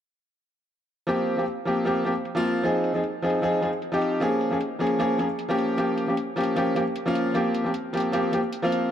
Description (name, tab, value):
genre	future bass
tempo	153 BPM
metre	4/4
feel	swing 55% on 16ths, half-time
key	unclear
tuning	A4 = 440 Hz
part	clear grand piano	accompaniment	1.1-8.9 s	F3 to Ab4	-22 LUFS	equal	tape echo
part	electronic hi-hat	drums	1.1-8.8 s	none	-44 LUFS	left 1 dB	low-pass filter on hats, small room ambience
room	moderate lush hall reverb, RT60 1.6 s, small room ambience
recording	dark, warm production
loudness	-22 LUFS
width	side -10 dB against mid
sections	1.1-8.9 A section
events	none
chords	1.1 C7sus4; 2.6 Fm7; 4.2 Bbm7; 5.8 Gm7b5; 7.3 C7sus4